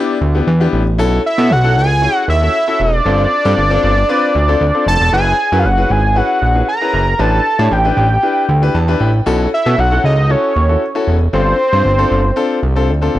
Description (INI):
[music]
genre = early-eighties boogie funk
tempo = 116 BPM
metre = 4/4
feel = straight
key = unclear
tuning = A4 = 440 Hz
[part]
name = fat analog lead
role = melody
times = 0.0-12.8 s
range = C5 to A#5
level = -15 LUFS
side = equal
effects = chorus, slapback echo
[part]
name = clear grand piano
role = accompaniment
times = 0.0-13.2 s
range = B3 to A5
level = -18 LUFS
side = left 3 dB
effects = none
[part]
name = fat analog bass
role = bass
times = 0.2-13.2 s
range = E1 to B2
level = -14 LUFS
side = equal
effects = none
[sound]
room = light reverb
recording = none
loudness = -11 LUFS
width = side -14 dB against mid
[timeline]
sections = 0.0-13.2 A section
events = grand piano fill 8.5-9.3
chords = 0.0 A9sus4; 1.0 B9sus4; 3.1 G9sus4; 5.1 F#9sus4; 7.2 A9sus4; 9.3 B9sus4; 11.3 G9sus4